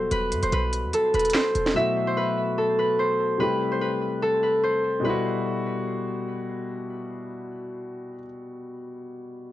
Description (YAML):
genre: hip hop, drill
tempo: 146 BPM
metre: 4/4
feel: half-time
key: E minor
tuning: A4 = 441 Hz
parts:
  - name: concert harp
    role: melody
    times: 0.0-7.1 s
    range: A4 to E5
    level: -24 LUFS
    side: equal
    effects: low-pass filter, tape echo
  - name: dark baby grand piano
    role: accompaniment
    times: 0.0-9.5 s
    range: B2 to G4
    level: -29 LUFS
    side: left 2 dB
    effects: low-pass filter
  - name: short 808-style bass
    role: bass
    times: 0.0-1.7 s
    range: E1 to G2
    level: -28 LUFS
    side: right 1 dB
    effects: none
  - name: drill drum kit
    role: drums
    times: 0.1-1.8 s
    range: handclaps, hi-hat, snare drum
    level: -26 LUFS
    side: right 1 dB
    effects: vintage 12-bit sampler grit, cassette tape
room: light reverb, studio reverb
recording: home recording on cassette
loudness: -22 LUFS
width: side -14 dB against mid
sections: 0.0-5.0 A section; 5.0-8.3 B section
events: none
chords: 0.0 Emadd9; 1.8 B7sus4; 3.4 C6; 5.0 Emadd9